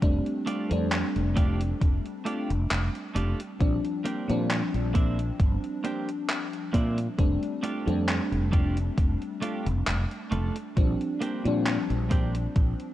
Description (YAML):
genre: vaporwave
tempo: 67 BPM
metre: 4/4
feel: swing 53% on 16ths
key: F major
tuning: A4 = 437 Hz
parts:
  - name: FM electric piano with soft pad layer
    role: accompaniment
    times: 0.0-12.9 s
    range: F3 to D4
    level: -30 LUFS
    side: left 1 dB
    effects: analog chorus, tape echo
  - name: mellow fretless electric bass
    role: bass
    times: 0.0-12.7 s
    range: F1 to Bb2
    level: -27 LUFS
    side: equal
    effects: none
  - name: electronic kick drum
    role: drums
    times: 0.0-12.8 s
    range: none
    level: -24 LUFS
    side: equal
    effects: overdrive, small room reverb
  - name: gated 80s digital drum machine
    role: drums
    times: 0.0-12.9 s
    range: handclaps, hi-hat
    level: -33 LUFS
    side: equal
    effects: gated reverb, overdrive, small room reverb
  - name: twelve-string electric guitar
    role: riff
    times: 0.5-12.4 s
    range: A3 to A4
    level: -34 LUFS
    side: right 2 dB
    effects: wide subtle chorus, tape echo
room: digital ambience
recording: cassette tape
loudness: -24 LUFS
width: side -14 dB against mid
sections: 0.0-12.9 A section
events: none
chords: 0.0 F69; 3.6 Bb69; 7.2 F69; 10.8 Bb69